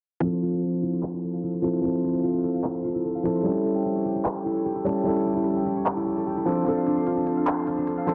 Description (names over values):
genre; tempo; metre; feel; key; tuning
future bass; 149 BPM; 4/4; half-time; F major; A4 = 440 Hz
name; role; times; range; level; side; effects
dark concert grand piano; accompaniment; 0.2-8.1 s; F3 to A4; -26 LUFS; equal; dub echo
concert harp; arpeggios; 0.2-8.1 s; D4 to G5; -32 LUFS; equal; low-pass filter, dub echo
big-room dance drum kit; drums; 1.0-8.1 s; handclaps, hi-hat; -33 LUFS; equal; overdrive, low-pass filter on snare, low-pass filter on hats
room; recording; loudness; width
light reverb; dense, heavily limited modern master, low-pass filter; -25 LUFS; mono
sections
0.2-8.1 A section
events
filter sweep on drum 0.2-8.1; filter sweep on harp 0.2-8.1; filter sweep 0.2-8.1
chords
0.2 Fmaj7; 3.4 A7; 6.5 Dm7